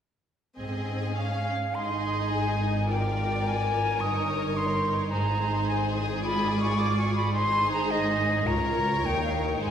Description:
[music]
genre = classical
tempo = 107 BPM (dotted quarters)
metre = 6/8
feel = rubato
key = Ab major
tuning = A4 = 440 Hz
[part]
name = rich studio violin section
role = melody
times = 0.6-9.7 s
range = C5 to F5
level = -38 LUFS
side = left 2 dB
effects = none
[part]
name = clear symphonic violin section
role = second line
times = 0.6-9.7 s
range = Ab4 to Bb4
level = -34 LUFS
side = left 2 dB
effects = none
[part]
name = rich symphonic viola section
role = accompaniment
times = 0.6-9.7 s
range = C4 to F4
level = -34 LUFS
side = right 1 dB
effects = none
[part]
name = warm studio double bass section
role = bass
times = 0.6-9.7 s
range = G1 to Eb2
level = -32 LUFS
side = right 1 dB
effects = none
[part]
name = warm symphonic cello section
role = bass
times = 0.6-9.7 s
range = Db2 to Ab2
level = -31 LUFS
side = right 1 dB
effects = none
[part]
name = bright concert flute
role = second line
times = 1.2-9.7 s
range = Eb5 to Eb6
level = -28 LUFS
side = equal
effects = none
[sound]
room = wet recital hall reverb, RT60 1.6 s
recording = recorded in a church or concert hall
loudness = -24 LUFS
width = side -8 dB against mid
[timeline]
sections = 0.6-1.7 A section; 1.7-9.7 B section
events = none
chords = 0.6 Ab; 1.2 Db/Ab; 1.7 Ab; 2.9 Bb7/Ab; 4.0 Eb7/G; 5.1 Ab; 6.2 Abdim7; 7.3 Ab; 8.5 Bbm/Db; 9.0 Eb5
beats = | 0.60 1.17 | 1.75 2.32 | 2.89 3.45 | 4.01 4.57 | 5.12 5.68 | 6.24 6.79 | 7.34 7.90 | 8.46 9.04 | 9.62

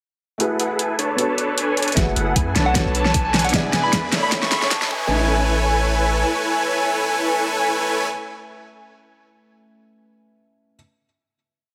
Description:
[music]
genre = future bass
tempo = 153 BPM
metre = 4/4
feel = swing 54% on 16ths, half-time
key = A major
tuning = A4 = 440 Hz
[part]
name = felt-muted upright piano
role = accompaniment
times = 0.4-10.8 s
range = A3 to G#5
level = -31 LUFS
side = equal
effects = sidechain pumping, delay
[part]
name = supersaw chords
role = riff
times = 0.4-8.1 s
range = D4 to B5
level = -24 LUFS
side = equal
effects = lush chorus, sidechain pumping, low-pass filter
[part]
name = pop drum kit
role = drums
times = 0.4-4.9 s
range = hi-hat, snare drum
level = -24 LUFS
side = equal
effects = overdrive
[part]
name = airy dreamy lead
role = arpeggios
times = 2.0-8.1 s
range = F#5 to B5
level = -28 LUFS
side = equal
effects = chorus, cassette tape, sidechain pumping, delay
[part]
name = long sustained 808-style bass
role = bass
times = 2.0-6.2 s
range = E1 to F#2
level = -26 LUFS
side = equal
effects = sidechain pumping
[part]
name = electronic kick drum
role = drums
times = 2.0-5.0 s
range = none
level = -25 LUFS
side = equal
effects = overdrive
[part]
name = riser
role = sound effects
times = 3.3-5.1 s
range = none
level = -33 LUFS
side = equal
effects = none
[part]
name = soft struck synth lead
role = melody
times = 2.7-4.9 s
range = F#5 to C#6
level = -27 LUFS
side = equal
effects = chorus, sidechain pumping, delay
[sound]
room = moderate lush hall reverb, RT60 1.9 s, digital ambience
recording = high-pass filter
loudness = -20 LUFS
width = mono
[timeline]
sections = 0.4-2.0 intro; 2.0-5.1 build; 5.1-8.2 final hit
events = build-up 2.0-5.1; drum fill 2.0-5.1; filter sweep on supersaw synth 2.0-5.1; filter sweep 2.0-5.1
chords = 0.4 F#m11; 1.2 Bm9; 2.0 F#m11; 2.8 Bm9; 3.5 E7; 4.3 Amaj7/E; 4.9 Amaj9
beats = | 0.40 0.79 1.18 1.57 | 1.97 2.36 2.75 3.14 | 3.54 3.93 4.32 4.71 | 5.11 5.50 5.89 6.28 | 6.67 7.07 7.46 7.85

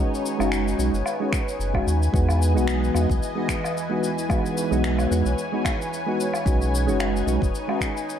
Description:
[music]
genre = sunset chillout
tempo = 111 BPM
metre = 4/4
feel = swing 55% on 16ths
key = B major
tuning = A4 = 440 Hz
[part]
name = soft electric-piano-like synth keys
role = accompaniment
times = 0.0-7.9 s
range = G#3 to F#4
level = -25 LUFS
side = equal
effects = chorus, auto-pan, tape echo
[part]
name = lush unison pad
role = sustained chords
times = 0.0-8.2 s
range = E3 to G#5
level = -28 LUFS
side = equal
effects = chorus, phaser
[part]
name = cabasa, woodblock and finger snaps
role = drums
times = 0.1-8.2 s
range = none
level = -31 LUFS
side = left 2 dB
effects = none
[part]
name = warm sub bass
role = bass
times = 0.4-7.5 s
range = F#1 to E2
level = -23 LUFS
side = equal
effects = none
[part]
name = electronic kick drum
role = drums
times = 1.3-7.9 s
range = none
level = -25 LUFS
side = equal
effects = none
[sound]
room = light reverb, small room ambience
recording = dark, warm production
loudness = -21 LUFS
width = side -9 dB against mid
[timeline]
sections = 0.0-8.2 A section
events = none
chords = 0.0 B69; 2.1 Emaj7; 6.5 B69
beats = 0.52 1.06 1.60 | 2.14 2.68 3.22 3.76 | 4.30 4.84 5.38 5.92 | 6.46 7.00 7.54 8.08

